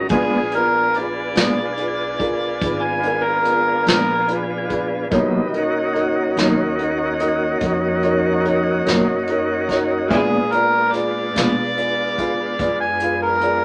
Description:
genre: slow blues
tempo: 48 BPM (dotted quarters)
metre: 12/8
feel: straight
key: unclear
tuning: A4 = 440 Hz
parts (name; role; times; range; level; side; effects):
- tonewheel organ; sustained chords; 0.0-13.6 s; Fb3 to Ab4; -25 LUFS; equal; slow rotary speaker
- upright bass; bass; 0.0-13.6 s; Ab1 to Cb3; -33 LUFS; equal; none
- overdriven harmonica; second line; 0.1-13.6 s; Db4 to Ab5; -22 LUFS; equal; none
- dark upright piano; accompaniment; 0.1-13.6 s; Cb4 to F5; -26 LUFS; equal; none
- mellow electric guitar; accompaniment; 0.1-11.6 s; Bb2 to D#4; -23 LUFS; equal; tremolo
- vintage brush drum kit; drums; 0.1-13.6 s; hi-hat, kick drum, snare drum; -25 LUFS; equal; none
room: wet studio reverb, RT60 0.6 s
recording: none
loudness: -19 LUFS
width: mono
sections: 0.0-13.6 A section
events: harmonica solo 0.0-13.6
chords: 0.1 Bb7b9; 5.1 Bmaj7; 10.1 Bb7b9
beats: | 0.11 1.36 2.62 3.87 | 5.12 6.37 7.62 8.87 | 10.11 11.36 12.60

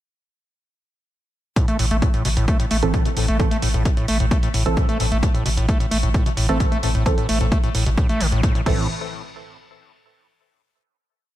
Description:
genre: driving peak-time techno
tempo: 131 BPM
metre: 4/4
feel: straight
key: A minor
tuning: A4 = 441 Hz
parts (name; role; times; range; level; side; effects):
- overdriven acid bass; riff; 1.6-8.9 s; A2 to A3; -23 LUFS; equal; sidechain pumping, ping-pong delay
- electronic kick drum; drums; 1.6-8.8 s; none; -20 LUFS; equal; none
- punchy analog drum machine; drums; 1.6-8.8 s; crash cymbal, hi-hat; -30 LUFS; right 2 dB; sidechain pumping on hats, sidechain pumping on cymbals
- saturated sub bass; bass; 1.8-8.9 s; A1; -24 LUFS; equal; overdrive, sidechain pumping, low-pass filter
- filtered dub chord stab; stabs; 2.8-8.8 s; E3 to A4; -26 LUFS; right 2 dB; wide subtle chorus, sidechain pumping, ping-pong delay
room: light reverb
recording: none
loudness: -17 LUFS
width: side -14 dB against mid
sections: 1.6-8.9 groove; 8.9-10.7 final hit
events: none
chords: 1.6 Am; 8.9 N.C.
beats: | 1.56 2.02 2.48 2.94 | 3.40 3.85 4.31 4.77 | 5.23 5.68 6.14 6.60 | 7.06 7.52 7.97 8.43

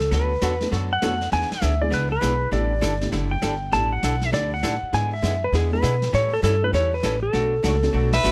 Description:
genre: country, western swing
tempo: 200 BPM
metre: 4/4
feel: swing 63% on 8ths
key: unclear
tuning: A4 = 441 Hz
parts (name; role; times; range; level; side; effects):
- clean lap steel guitar; melody; 0.0-8.3 s; G#4 to A5; -26 LUFS; equal; none
- upright bass; bass; 0.0-8.3 s; F#1 to B2; -26 LUFS; equal; none
- vintage brush drum kit; drums; 0.0-8.3 s; brushed snare drum, hi-hat, snare drum; -33 LUFS; equal; none
- archtop guitar, miked and amplified; accompaniment; 0.1-8.3 s; B2 to A4; -31 LUFS; equal; none
- honky-tonk upright piano; accompaniment; 0.6-8.3 s; G#3 to A4; -33 LUFS; equal; none
- clear fiddle; second line; 8.1-8.3 s; B4; -24 LUFS; equal; none
room: little or no reverb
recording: none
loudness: -22 LUFS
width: mono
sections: 0.0-8.3 A section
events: drum fill 7.9-8.2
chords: 0.1 Bm7/D; 1.3 E7; 2.5 A9sus4; 4.9 E7; 6.1 A7; 7.3 Bm9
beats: | 0.12 0.42 0.72 1.02 | 1.32 1.62 1.92 2.22 | 2.52 2.82 3.12 3.42 | 3.72 4.03 4.33 4.63 | 4.93 5.23 5.53 5.83 | 6.13 6.43 6.73 7.03 | 7.33 7.64 7.94 8.24

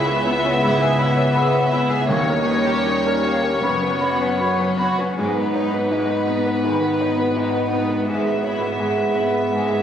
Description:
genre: cinematic, emotional film score for orchestra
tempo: 77-85 BPM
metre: 4/4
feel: rubato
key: G# minor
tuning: A4 = 440 Hz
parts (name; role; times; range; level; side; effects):
- warm studio violin section; melody; 0.0-9.8 s; B4 to E5; -25 LUFS; left 1 dB; none
- clear oboe; second line; 0.0-5.0 s; C#5 to E5; -30 LUFS; equal; none
- warm symphonic violin section; second line; 0.0-9.8 s; G#3 to G#4; -27 LUFS; equal; none
- felt-muted upright piano; accompaniment; 0.0-9.8 s; C#2 to C#5; -25 LUFS; equal; none
- rich studio viola section; accompaniment; 0.0-9.8 s; A#3 to B3; -29 LUFS; equal; none
- dark French horn section; sustained chords; 0.0-9.8 s; F#3 to G#4; -24 LUFS; left 1 dB; none
- concert harp; arpeggios; 0.0-9.8 s; F#2 to E5; -30 LUFS; left 2 dB; none
- rich symphonic double bass section; bass; 0.0-9.8 s; F#1 to D#2; -29 LUFS; right 1 dB; none
- warm symphonic cello section; bass; 0.0-9.8 s; C#2 to G#2; -28 LUFS; right 1 dB; none
- mellow hollow concert flute; second line; 0.3-4.9 s; G5 to B5; -29 LUFS; equal; none
- timpani; percussion; 2.1-3.2 s; D#3; -28 LUFS; equal; none
room: wet scoring stage reverb, RT60 1.6 s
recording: recorded on a phone in the room, club reverb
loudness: -17 LUFS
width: side -9 dB against mid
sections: 0.0-5.2 A section; 5.2-9.8 A section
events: none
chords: 0.0 C#m7; 2.1 D#7; 3.6 F#sus4; 5.2 G#m; 8.1 E/G#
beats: 0.63 1.36 | 2.10 2.86 3.62 4.40 | 5.17 5.90 6.63 7.37 | 8.09 8.79 9.51

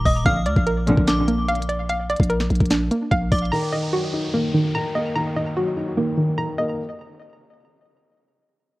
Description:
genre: hip hop, trap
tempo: 147 BPM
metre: 4/4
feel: half-time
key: Eb harmonic minor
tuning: A4 = 439 Hz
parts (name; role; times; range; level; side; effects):
- metallic FM bell; second line; 0.0-3.5 s; D6 to F6; -28 LUFS; left 1 dB; chorus, digital delay
- hollow square pluck; arpeggios; 0.0-6.8 s; Eb3 to Bb5; -23 LUFS; right 1 dB; chorus, digital delay
- growling 808-style bass; bass; 0.0-3.5 s; Eb1 to D2; -22 LUFS; equal; none
- trap drum kit; drums; 0.1-3.5 s; hi-hat, kick drum, snare drum; -22 LUFS; equal; none
- muted studio string section; stabs; 0.3-1.0 s; F2 to D3; -24 LUFS; equal; digital delay
- dark baby grand piano; accompaniment; 3.5-6.8 s; Eb3 to Eb4; -25 LUFS; left 1 dB; none
- downlifter; sound effects; 3.5-6.8 s; none; -36 LUFS; equal; none
room: light reverb, digital ambience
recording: worn, warbling old tape, cassette tape, warbly pitch drift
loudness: -19 LUFS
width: side -19 dB against mid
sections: 0.0-3.5 A section; 3.5-6.8 B section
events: none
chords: 0.3 Bb; 3.5 Ebm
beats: | 0.26 0.67 1.07 1.48 | 1.89 2.30 2.71 3.12 | 3.52 3.93 4.34 4.75 | 5.16 5.56 5.97 6.38

